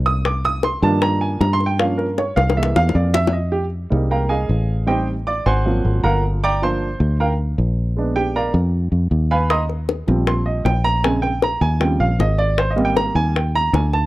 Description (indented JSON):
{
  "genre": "Afro-Cuban jazz",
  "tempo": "156 BPM",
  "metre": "4/4",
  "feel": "straight",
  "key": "C minor",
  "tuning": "A4 = 441 Hz",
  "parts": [
    { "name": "fingered electric bass", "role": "bass", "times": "0.0-14.1 s", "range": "G1 to G2", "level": "-19 LUFS", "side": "equal", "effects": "none" },
    { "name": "warm baby grand piano", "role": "accompaniment", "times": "0.1-14.1 s", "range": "Db3 to D#6", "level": "-20 LUFS", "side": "right 2 dB", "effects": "none" },
    { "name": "bongos", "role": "percussion", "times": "0.1-3.4, 9.5-14.1 s", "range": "none", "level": "-22 LUFS", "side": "left 6 dB", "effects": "none" }
  ],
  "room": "small room ambience",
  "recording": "dry, close 1970s-style studio recording",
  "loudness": "-16 LUFS",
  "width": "side -17 dB against mid",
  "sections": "0.0-3.3 A section; 3.3-14.1 A section",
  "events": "grand piano solo 0.0-14.1; drum fill 2.4-3.3",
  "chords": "0.2 Cm11; 1.8 Gm7b5; 2.6 C7b13; 3.3 Fm11; 4.9 Am7b5; 5.7 Ab13; 6.4 Gm7; 8.0 Bb7b9; 9.5 Eb69; 11.0 Bbm9; 11.8 Eb13; 12.6 Abmaj9"
}